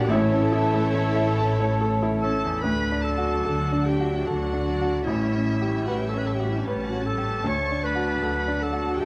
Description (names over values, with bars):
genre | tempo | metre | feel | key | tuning
classical, romantic movement for piano and orchestra | 74 BPM | 3/4 | uneven beats, rubato | D major | A4 = 436 Hz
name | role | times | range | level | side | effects
bright baby grand piano | melody | 0.0-9.1 s | A1 to A5 | -29 LUFS | equal | none
muted studio violin section | melody | 0.0-9.1 s | C#5 to A5 | -42 LUFS | equal | none
mellow large flute ensemble | second line | 0.0-2.3 s | G5 to A5 | -34 LUFS | equal | none
muted chamber violin section | second line | 0.0-9.1 s | G4 to C#6 | -37 LUFS | equal | none
muted studio viola section | accompaniment | 0.0-9.1 s | F#3 to E4 | -35 LUFS | equal | none
mellow French horn section | sustained chords | 0.0-2.3 s | C#4 to A4 | -36 LUFS | equal | none
warm trombone section | sustained chords | 0.0-2.3 s | D3 to Bb3 | -35 LUFS | equal | none
muted studio cello section | bass | 0.0-9.1 s | D2 to D3 | -33 LUFS | equal | none
muted studio double bass section | bass | 0.0-9.1 s | A1 to D2 | -32 LUFS | equal | none
mellow cor anglais | second line | 0.1-2.3 s | A4 | -38 LUFS | equal | none
warm clarinet | second line | 0.1-9.1 s | C#4 to C#5 | -32 LUFS | equal | none
room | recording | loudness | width
moderate recital hall reverb, RT60 1.7 s | close, detailed microphones | -24 LUFS | mono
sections
0.0-2.6 A section; 2.6-9.1 B section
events
none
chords
0.1 A; 2.6 D; 5.1 A9; 7.4 D